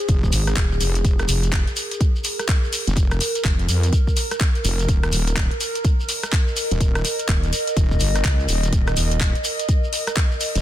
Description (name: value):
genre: bass house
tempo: 125 BPM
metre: 4/4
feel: swing 62% on 16ths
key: F minor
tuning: A4 = 435 Hz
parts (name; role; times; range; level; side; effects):
- warbly tape-like pad; texture; 0.0-10.6 s; Ab4 to Eb5; -28 LUFS; right 1 dB; chorus, built-in reverb, sidechain pumping
- wobble bass; bass; 0.1-10.6 s; Eb1 to F2; -21 LUFS; equal; chorus, tube saturation, sidechain pumping
- electronic kick drum; drums; 0.1-10.3 s; none; -19 LUFS; equal; studio reverb
- garage drum kit; drums; 0.1-10.6 s; handclaps, hi-hat, rim click; -26 LUFS; left 1 dB; soft clipping on snare, studio reverb
- shekere; percussion; 0.1-10.6 s; none; -30 LUFS; right 1 dB; none
room: little or no reverb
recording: dense, heavily limited modern master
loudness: -18 LUFS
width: side -12 dB against mid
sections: 0.0-10.6 A section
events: none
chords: 0.0 Fm; 4.9 Eb5